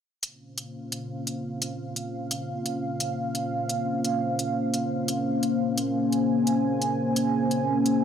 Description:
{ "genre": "half-time drum and bass", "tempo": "173 BPM", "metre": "4/4", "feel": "swing 56% on 16ths, half-time", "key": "Bb minor", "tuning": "A4 = 440 Hz", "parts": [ { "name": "dark analog pad", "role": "sustained chords", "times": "0.2-8.0 s", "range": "Bb3 to Ab5", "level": "-25 LUFS", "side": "equal", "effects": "chorus" }, { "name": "electronic hi-hat", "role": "drums", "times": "0.2-7.9 s", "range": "none", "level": "-30 LUFS", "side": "equal", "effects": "overdrive, small room ambience" } ], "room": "wet huge ambient reverb, RT60 7.7 s", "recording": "dreamy mix soaked in reverb", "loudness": "-25 LUFS", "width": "side -8 dB against mid", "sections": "0.2-8.0 A section", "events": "none", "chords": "0.2 Bbmadd9" }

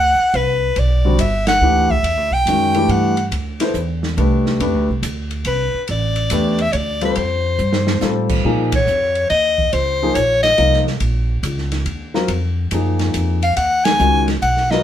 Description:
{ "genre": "modal jazz", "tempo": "141 BPM", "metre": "3/4", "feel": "swing 66% on 8ths", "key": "E minor, Bb minor from 8.4 s", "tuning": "A4 = 439 Hz", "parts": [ { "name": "breathy soprano saxophone", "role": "melody", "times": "0.0-3.3, 5.5-10.8, 13.4-14.8 s", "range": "B4 to Ab5", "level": "-17 LUFS", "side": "left 1 dB", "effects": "none" }, { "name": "upright bass", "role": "bass", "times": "0.0-14.8 s", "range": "G1 to Bb2", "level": "-20 LUFS", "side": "right 1 dB", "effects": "none" }, { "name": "open jazz drum kit", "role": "drums", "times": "0.3-14.8 s", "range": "crash cymbal, hi-hat, kick drum, ride cymbal, snare drum", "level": "-25 LUFS", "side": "right 1 dB", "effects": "none" }, { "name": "warm concert grand piano", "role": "accompaniment", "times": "1.0-14.8 s", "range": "D3 to C5", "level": "-19 LUFS", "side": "left 2 dB", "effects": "none" } ], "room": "moderate studio reverb, RT60 0.6 s", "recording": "band playing live in one room", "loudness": "-15 LUFS", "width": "side -10 dB against mid", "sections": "0.0-8.4 A section; 8.4-14.8 B section", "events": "band accent 1.4, 8.7, 13.8; drum fill 7.6-8.0", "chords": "0.0 Em11; 3.3 D9sus4; 7.2 F; 8.4 Bbm11; 13.6 Abm11" }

